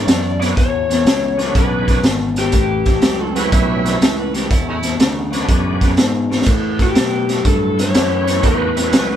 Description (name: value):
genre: electric blues shuffle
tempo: 122 BPM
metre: 4/4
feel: swing 67% on 8ths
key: unclear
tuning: A4 = 436 Hz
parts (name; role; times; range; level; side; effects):
- lead guitar through a small cranked amp; melody; 0.0-3.3, 6.8-9.2 s; G4 to D5; -20 LUFS; left 5 dB; overdrive
- electric guitar through a small old amp; riff; 0.0-9.2 s; E2 to F#3; -22 LUFS; left 2 dB; none
- fingered electric bass; bass; 0.0-9.2 s; G#1 to B2; -22 LUFS; equal; none
- raw garage drum kit; drums; 0.1-9.1 s; crash cymbal, hi-hat, kick drum, snare drum; -16 LUFS; equal; none
- bright tonewheel organ; accompaniment; 0.4-9.2 s; D#3 to G4; -22 LUFS; right 4 dB; slow rotary speaker, overdrive, chorus vibrato
- overdriven harmonica; second line; 3.0-4.9 s; A3 to E5; -25 LUFS; right 3 dB; none
room: light reverb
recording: band playing live in one room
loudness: -13 LUFS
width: side -10 dB against mid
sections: 0.0-9.2 A section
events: drum fill 6.2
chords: 0.0 E9; 2.5 A9; 4.5 E9; 6.5 A9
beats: 0.08 | 0.57 1.06 1.55 2.04 | 2.54 3.03 3.52 4.01 | 4.50 4.99 5.49 5.98 | 6.47 6.96 7.45 7.94 | 8.44 8.93